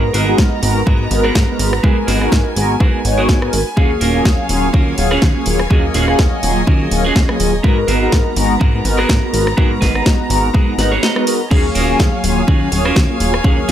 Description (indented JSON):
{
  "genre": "filtered disco house",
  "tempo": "124 BPM",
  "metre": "4/4",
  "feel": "swing 55% on 16ths",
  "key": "unclear",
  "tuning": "A4 = 440 Hz",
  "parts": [
    { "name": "mellow synth brass", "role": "accompaniment", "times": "0.0-13.7 s", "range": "Gb3 to Bb5", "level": "-18 LUFS", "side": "equal", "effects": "chorus, phaser, sidechain pumping" },
    { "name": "clear chamber violin section", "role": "sustained chords", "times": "0.0-13.7 s", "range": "Cb4 to Bb5", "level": "-24 LUFS", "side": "equal", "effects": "sidechain pumping" },
    { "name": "clean electric guitar", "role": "riff", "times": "0.0-13.7 s", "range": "Cb4 to Gb5", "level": "-21 LUFS", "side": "right 2 dB", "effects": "sidechain pumping" },
    { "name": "plucky analog bass", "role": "bass", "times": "0.0-13.7 s", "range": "Eb1 to Ab2", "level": "-19 LUFS", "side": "equal", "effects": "sidechain pumping" },
    { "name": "house drum kit", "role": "drums", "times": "0.1-13.7 s", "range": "crash cymbal, hi-hat, rim click, snare drum", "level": "-21 LUFS", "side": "equal", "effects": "sidechain pumping on cymbals, sidechain pumping on hats" },
    { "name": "electronic kick drum", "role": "drums", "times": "0.4-13.6 s", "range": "none", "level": "-14 LUFS", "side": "equal", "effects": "none" }
  ],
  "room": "little or no reverb",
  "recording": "none",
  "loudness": "-12 LUFS",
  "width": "side -10 dB against mid",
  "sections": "0.0-13.7 A section",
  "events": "clean electric guitar fill 10.5-11.5",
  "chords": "0.0 Abm9; 3.8 Ebm11; 7.6 Abm9; 11.5 Ebm11"
}